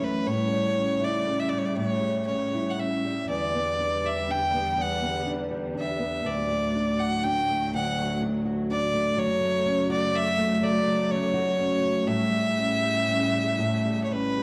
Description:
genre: celtic folk, Celtic slow air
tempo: 61 BPM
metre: 3/4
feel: rubato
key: unclear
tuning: A4 = 440 Hz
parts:
  - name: clear fiddle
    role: melody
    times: 0.0-14.4 s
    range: B4 to G5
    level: -29 LUFS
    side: equal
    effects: none
  - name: nylon-string guitar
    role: accompaniment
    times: 0.0-14.4 s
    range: D2 to G4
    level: -30 LUFS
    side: equal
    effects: none
  - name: warm studio string section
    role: sustained chords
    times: 0.0-14.4 s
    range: D2 to A4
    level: -36 LUFS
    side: equal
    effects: none
room: wet recital hall reverb, RT60 1.7 s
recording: dark, warm production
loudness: -26 LUFS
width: mono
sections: 0.0-14.4 A section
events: none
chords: 0.3 A7; 3.3 Em7; 6.3 D; 9.2 F#m; 12.1 A7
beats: | 0.28 1.27 2.28 | 3.30 4.30 5.28 | 6.27 7.25 8.21 | 9.16 10.13 11.10 | 12.08 13.07 14.11

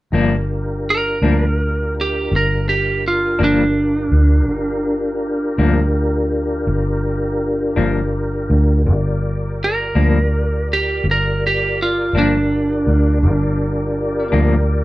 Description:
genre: slow blues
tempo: 55 BPM (dotted quarters)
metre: 12/8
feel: straight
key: G minor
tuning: A4 = 438 Hz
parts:
  - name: clean electric guitar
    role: accompaniment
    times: 0.1-14.5 s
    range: G2 to D4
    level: -19 LUFS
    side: left 4 dB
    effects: tremolo
  - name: mellow tonewheel organ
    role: sustained chords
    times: 0.1-14.8 s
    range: D4 to D5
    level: -23 LUFS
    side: left 1 dB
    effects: chorus vibrato, slow rotary speaker
  - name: vintage muted fingered electric bass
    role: bass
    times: 0.1-14.8 s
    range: G1 to D2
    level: -18 LUFS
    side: equal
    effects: none
  - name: lightly driven lead guitar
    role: melody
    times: 0.9-14.3 s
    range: D4 to Bb4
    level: -19 LUFS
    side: right 2 dB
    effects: none
room: light reverb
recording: band playing live in one room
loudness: -15 LUFS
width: side -17 dB against mid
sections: 0.1-14.8 A section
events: none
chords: 0.1 Gm7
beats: | 0.12 1.22 2.31 3.40 | 4.50 5.59 6.68 7.77 | 8.87 9.96 11.05 12.14 | 13.23 14.32

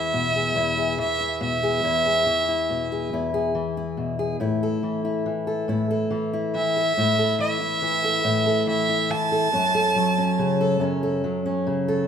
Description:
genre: acoustic folk duo or small band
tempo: 47 BPM (dotted quarters)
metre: 6/8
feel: straight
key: E major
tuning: A4 = 437 Hz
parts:
  - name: warm fiddle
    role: melody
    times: 0.0-10.8 s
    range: E5 to A5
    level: -22 LUFS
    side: right 2 dB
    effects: none
  - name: fingerpicked steel-string acoustic guitar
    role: accompaniment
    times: 0.0-12.1 s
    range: E2 to A4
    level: -23 LUFS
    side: left 1 dB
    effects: none
room: moderate large studio reverb, RT60 1.3 s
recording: minimal, uncompressed stereo recording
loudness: -21 LUFS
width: side -8 dB against mid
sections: 0.0-12.1 A section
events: fiddle solo 0.0-12.1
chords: 0.0 E; 4.4 A5; 9.5 F#m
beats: 0.56 | 1.84 3.12 | 4.41 5.69 | 6.97 8.25 | 9.53 10.81

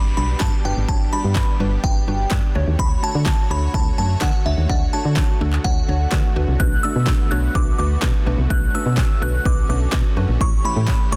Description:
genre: dance-pop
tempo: 126 BPM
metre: 4/4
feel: straight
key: B minor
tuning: A4 = 439 Hz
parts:
  - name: glassy synth bell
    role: melody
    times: 0.0-11.2 s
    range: E5 to F#6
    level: -29 LUFS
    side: equal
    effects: chorus, digital delay
  - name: mallet-like synth pluck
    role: accompaniment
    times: 0.0-11.2 s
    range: G3 to D5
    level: -32 LUFS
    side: equal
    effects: chorus, phaser, sidechain pumping
  - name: supersaw pad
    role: sustained chords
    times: 0.0-11.2 s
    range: D3 to C#5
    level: -34 LUFS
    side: equal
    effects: sidechain pumping
  - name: solid FM bass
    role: bass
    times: 0.0-11.2 s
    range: G1 to D3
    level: -23 LUFS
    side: equal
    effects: sidechain pumping
  - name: downlifter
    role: sound effects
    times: 0.0-2.8 s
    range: none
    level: -43 LUFS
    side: equal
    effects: none
  - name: house drum kit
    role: drums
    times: 0.4-11.0 s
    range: handclaps, kick drum, snare drum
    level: -23 LUFS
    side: equal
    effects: none
room: digital ambience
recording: dense, heavily limited modern master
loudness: -19 LUFS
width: mono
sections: 0.0-11.2 A section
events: none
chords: 0.0 Gmaj7; 2.6 Dmaj7; 6.6 Bm7; 10.4 A7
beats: 0.41 | 0.89 1.36 1.84 2.31 | 2.79 3.27 3.74 4.22 | 4.70 5.17 5.65 6.12 | 6.60 7.08 7.55 8.03 | 8.51 8.98 9.46 9.93 | 10.41 10.89

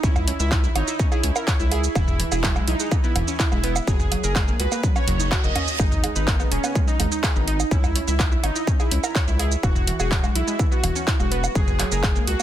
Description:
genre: melodic techno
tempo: 125 BPM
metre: 4/4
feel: straight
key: unclear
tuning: A4 = 441 Hz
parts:
  - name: soft supersaw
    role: melody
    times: 0.0-12.4 s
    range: C#4 to D#5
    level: -28 LUFS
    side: right 2 dB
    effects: sidechain pumping, digital delay
  - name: analog pluck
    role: arpeggios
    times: 0.0-12.4 s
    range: E3 to E5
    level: -29 LUFS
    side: equal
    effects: chorus, cassette tape, sidechain pumping, ping-pong delay
  - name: round analog bass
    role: bass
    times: 0.0-12.3 s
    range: D#1 to C#2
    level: -25 LUFS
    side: equal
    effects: sidechain pumping
  - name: electronic kick drum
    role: drums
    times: 0.0-12.1 s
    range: none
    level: -22 LUFS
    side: equal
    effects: distortion, overdrive
  - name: techno drum kit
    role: drums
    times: 0.0-12.4 s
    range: handclaps, hi-hat, shaker, toms, woodblock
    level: -26 LUFS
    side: right 2 dB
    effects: overdrive, sidechain pumping on hats, sidechain pumping on perc, sidechain pumping on toms
  - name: reverse cymbal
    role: sound effects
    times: 5.0-5.8 s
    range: none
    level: -31 LUFS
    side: right 5 dB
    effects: none
room: light reverb, digital ambience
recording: dense, heavily limited modern master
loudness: -19 LUFS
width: side -11 dB against mid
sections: 0.0-12.4 A section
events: reverse cymbal 5.0-5.8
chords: 0.0 C#m; 2.0 E; 3.9 F#sus2; 5.8 G#m; 7.7 C#m; 9.6 Eadd9; 11.6 F#sus2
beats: | 0.04 0.52 0.99 1.48 | 1.96 2.44 2.92 3.40 | 3.88 4.36 4.83 5.32 | 5.79 6.28 6.75 7.24 | 7.71 8.20 8.68 9.15 | 9.63 10.12 10.60 11.07 | 11.55 12.04

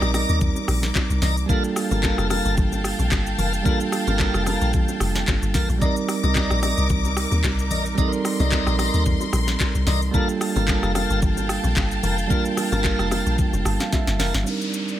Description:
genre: amapiano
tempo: 111 BPM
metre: 4/4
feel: swing 55% on 16ths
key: C dorian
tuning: A4 = 440 Hz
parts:
  - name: bell-like tine electric piano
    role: accompaniment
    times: 0.0-15.0 s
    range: G3 to A5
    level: -26 LUFS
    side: right 5 dB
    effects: low-pass filter
  - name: warm studio string section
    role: sustained chords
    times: 0.0-15.0 s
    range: Eb3 to D6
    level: -30 LUFS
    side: left 1 dB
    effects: low-pass filter
  - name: tonewheel organ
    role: stabs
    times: 0.0-14.3 s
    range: Bb4 to Bb5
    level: -28 LUFS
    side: left 2 dB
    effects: slow rotary speaker, ping-pong delay
  - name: deep log drum bass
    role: bass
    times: 0.0-14.4 s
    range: F1 to Eb2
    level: -23 LUFS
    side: equal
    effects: none
  - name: afro-pop drum kit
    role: drums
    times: 0.0-15.0 s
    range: handclaps, hi-hat, kick drum, rim click, shaker, snare drum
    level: -24 LUFS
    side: equal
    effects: none
  - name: downlifter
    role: sound effects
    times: 0.0-1.5, 14.5-15.0 s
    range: none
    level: -34 LUFS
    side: left 1 dB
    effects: none
  - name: bongos and congas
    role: percussion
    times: 0.1-14.3 s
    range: none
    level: -32 LUFS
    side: left 4 dB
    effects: none
room: little or no reverb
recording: none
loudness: -19 LUFS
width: side -12 dB against mid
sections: 0.0-14.5 A section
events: drop 0.0-14.5; tine electric piano fill 13.4-14.5; drum fill 13.9-14.5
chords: 0.0 Cm9; 1.5 Gm9; 5.8 Cm9; 10.1 Gm9; 14.5 Cm9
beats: 0.41 0.95 | 1.49 2.03 2.57 3.12 | 3.65 4.20 4.74 5.28 | 5.82 6.36 6.90 7.44 | 7.98 8.52 9.06 9.60 | 10.14 10.68 11.22 11.76 | 12.30 12.84 13.38 13.93 | 14.47

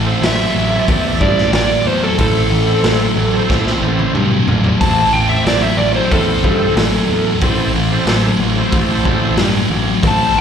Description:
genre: blues rock power trio and southern rock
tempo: 92 BPM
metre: 4/4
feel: straight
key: A minor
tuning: A4 = 440 Hz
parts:
  - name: thick fuzz guitar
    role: riff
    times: 0.0-10.4 s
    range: A2 to F#3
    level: -17 LUFS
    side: equal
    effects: distortion, slapback echo
  - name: growling picked electric bass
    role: bass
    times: 0.0-10.4 s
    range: A1 to G2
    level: -19 LUFS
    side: equal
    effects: overdrive
  - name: overdriven tonewheel organ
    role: sustained chords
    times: 0.1-10.3 s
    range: C4 to D5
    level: -24 LUFS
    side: right 4 dB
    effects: chorus vibrato, slow rotary speaker
  - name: raw garage drum kit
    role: drums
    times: 0.2-10.2 s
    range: hi-hat, kick drum, snare drum, toms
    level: -19 LUFS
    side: equal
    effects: none
  - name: overdriven slide guitar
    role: melody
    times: 0.3-10.4 s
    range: A4 to A5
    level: -18 LUFS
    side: equal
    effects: slapback echo, tape echo
room: studio ambience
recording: live gig heard through the venue's PA, club reverb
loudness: -12 LUFS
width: side -8 dB against mid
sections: 0.0-10.4 A section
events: electric slide guitar solo 0.0-10.4; drum fill 3.5-4.8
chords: 0.0 Am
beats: 0.23 0.88 1.53 | 2.19 2.84 3.49 4.15 | 4.80 5.46 6.11 6.76 | 7.42 8.07 8.72 9.38 | 10.03

